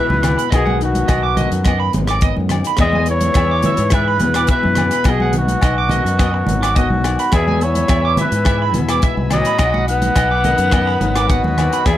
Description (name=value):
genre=highlife guitar band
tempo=106 BPM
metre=4/4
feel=straight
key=unclear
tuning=A4 = 440 Hz
part: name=breathy trumpet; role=melody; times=0.0-12.0 s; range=F#4 to F#5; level=-19 LUFS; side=equal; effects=none
part: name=growling tenor saxophone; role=second line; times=0.0-12.0 s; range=B2 to B3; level=-26 LUFS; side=left 6 dB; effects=analog delay
part: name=nylon-string guitar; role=accompaniment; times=0.0-12.0 s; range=E2 to G#4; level=-24 LUFS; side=left 5 dB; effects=none
part: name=electric guitar at the edge of break-up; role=arpeggios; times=0.0-12.0 s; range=D#5 to D6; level=-23 LUFS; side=right 7 dB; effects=lush chorus, analog delay
part: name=fingered electric bass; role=bass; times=0.1-12.0 s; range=G#1 to G#2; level=-19 LUFS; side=equal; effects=none
part: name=congas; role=percussion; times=0.1-11.7 s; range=none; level=-23 LUFS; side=right 1 dB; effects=none
part: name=tight funk drum kit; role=drums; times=0.2-12.0 s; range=hi-hat, kick drum, rim click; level=-20 LUFS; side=equal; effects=none
part: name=agogo bells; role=percussion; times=0.2-12.0 s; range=none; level=-28 LUFS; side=left 8 dB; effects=none
part: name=combo organ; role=sustained chords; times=7.3-12.0 s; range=D#5 to B5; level=-30 LUFS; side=left 2 dB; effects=none
room=light reverb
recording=none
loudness=-13 LUFS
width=side -12 dB against mid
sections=0.0-12.0 A section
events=none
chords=0.0 E; 0.5 B; 2.8 E; 5.1 B; 7.3 E; 9.6 B